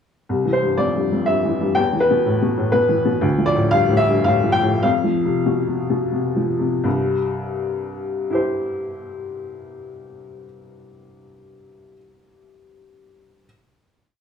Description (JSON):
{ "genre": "neoclassical minimalist piano", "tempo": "82-124 BPM", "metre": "3/4", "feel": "rubato", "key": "C major", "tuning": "A4 = 436 Hz", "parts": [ { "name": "clear upright piano", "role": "solo", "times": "0.3-13.5 s", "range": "C2 to G5", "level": "-18 LUFS", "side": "left 1 dB", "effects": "none" } ], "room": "light reverb", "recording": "studio reverb", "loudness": "-17 LUFS", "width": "side -7 dB against mid", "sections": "0.3-6.8 A section; 6.8-11.2 final chord", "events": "slowing down 2.5-6.8", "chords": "0.3 C; 1.8 E5; 3.2 Dm; 4.8 F5; 6.8 C" }